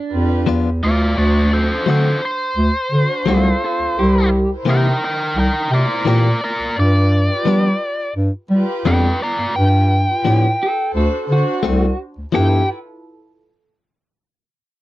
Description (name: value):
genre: blues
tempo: 86 BPM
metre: 4/4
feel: straight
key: G mixolydian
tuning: A4 = 435 Hz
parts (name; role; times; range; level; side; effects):
- electric guitar through a small old amp; second line; 0.0-4.5, 10.6-12.7 s; D4 to A4; -22 LUFS; right 2 dB; none
- dark chamber string section; sustained chords; 0.1-12.7 s; D4 to C5; -27 LUFS; equal; none
- mellow bass clarinet; bass; 0.1-12.7 s; C2 to G3; -16 LUFS; equal; none
- direct-recorded clean electric guitar; stabs; 0.5-12.6 s; E3 to A4; -19 LUFS; left 6 dB; none
- biting lead guitar; melody; 0.8-12.7 s; F4 to Bb5; -20 LUFS; equal; overdrive, slapback echo
room: little or no reverb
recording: dry, close 1970s-style studio recording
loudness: -14 LUFS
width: side -16 dB against mid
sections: 0.0-12.3 A section; 12.3-14.8 B section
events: none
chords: 0.0 G7; 1.2 D7; 4.0 C7; 6.8 G7; 10.9 D7; 12.3 G13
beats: 0.47 | 1.17 1.87 2.57 3.27 | 3.97 4.67 5.36 6.06 | 6.76 7.46 8.15 8.85 | 9.55 10.25 10.95 11.64 | 12.34